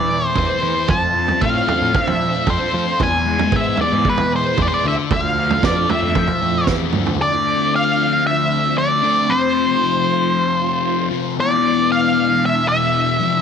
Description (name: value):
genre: psychedelic rock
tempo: 114 BPM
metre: 4/4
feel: straight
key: E phrygian dominant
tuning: A4 = 439 Hz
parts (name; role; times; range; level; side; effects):
- octave-fuzz lead guitar; melody; 0.0-13.4 s; B4 to A5; -18 LUFS; right 1 dB; distortion, tape echo
- phased string machine; sustained chords; 0.0-13.4 s; E3 to F4; -27 LUFS; right 15 dB; ensemble chorus, phaser
- fuzz guitar; riff; 0.0-13.4 s; E2 to B4; -21 LUFS; left 13 dB; distortion, phaser
- fuzz picked electric bass; bass; 0.0-7.2 s; D2 to F3; -23 LUFS; right 1 dB; overdrive
- vintage drum kit; drums; 0.4-7.2 s; kick drum, snare drum, toms; -22 LUFS; right 4 dB; none
room: moderate spring reverb, RT60 2.3 s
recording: 1960s-style stereo with parts hard left and right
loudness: -15 LUFS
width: side -7 dB against mid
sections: 0.0-7.2 A section; 7.2-13.4 B section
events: drum fill 6.7-7.2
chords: 0.0 Amadd9/E; 0.9 F6; 3.0 E; 4.8 Dm; 6.2 Fmaj7; 7.2 Dm7; 9.3 F; 11.4 E7